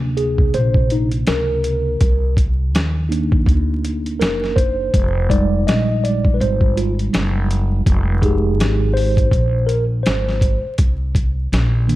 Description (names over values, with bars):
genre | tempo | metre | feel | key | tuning
hip hop, jazz-hop | 82 BPM | 4/4 | swing 60% on 16ths | C minor | A4 = 440 Hz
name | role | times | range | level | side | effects
mellow tine electric piano | accompaniment | 0.0-12.0 s | C3 to Eb5 | -20 LUFS | right 1 dB | medium stereo tremolo
upright bass | bass | 0.0-12.0 s | F1 to Eb2 | -19 LUFS | equal | none
boom bap sampler-style drum kit | drums | 0.2-12.0 s | hi-hat, kick drum, snare drum | -18 LUFS | equal | none
room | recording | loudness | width
little or no reverb | dark, warm production, vinyl crackle | -15 LUFS | side -16 dB against mid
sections
0.0-12.0 A section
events
tine electric piano solo 0.0-12.0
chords
0.0 Cm9; 4.9 Fm9; 10.8 C7(no3)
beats
0.55 1.28 | 2.01 2.74 3.48 4.21 | 4.94 5.67 6.40 7.13 | 7.87 8.60 9.33 10.06 | 10.79 11.52